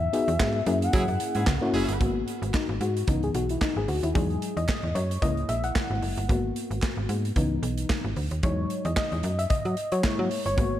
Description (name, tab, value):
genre	early-eighties boogie funk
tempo	112 BPM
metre	4/4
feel	swing 56% on 16ths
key	unclear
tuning	A4 = 440 Hz
part	gliding portamento lead	melody	0.0-1.7 s	E5 to F#5	-31 LUFS	left 1 dB	chorus, slapback echo, tape echo
part	slap-like FM bass	bass	0.0-10.8 s	F#1 to F#3	-28 LUFS	equal	none
part	FM electric piano with tremolo	accompaniment	0.1-10.8 s	E3 to F#5	-28 LUFS	left 2 dB	slapback echo
part	modern studio drum kit	drums	0.1-10.7 s	handclaps, hi-hat, kick drum, snare drum	-29 LUFS	right 1 dB	none
part	group handclap	percussion	0.4-10.2 s	none	-42 LUFS	right 3 dB	none
part	warm horn section	second line	0.9-2.0 s	C#4 to G#4	-35 LUFS	right 2 dB	slapback echo, tape echo
room	light reverb, small room ambience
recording	none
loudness	-24 LUFS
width	side -12 dB against mid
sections	0.0-2.0 A section; 2.0-10.8 B section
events	band accent 0.0-2.0; FM electric piano solo 2.0-10.8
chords	0.0 Emaj7; 0.7 F#9; 2.0 G#m9; 3.1 C#m9; 4.2 Emaj7; 5.0 F#9; 6.3 G#m9; 7.4 C#m9; 8.4 Emaj7; 9.2 F#9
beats	0.40 0.94 1.47 | 2.01 2.54 3.08 3.62 | 4.15 4.69 5.22 5.76 | 6.29 6.83 7.37 7.90 | 8.44 8.97 9.51 10.04 | 10.58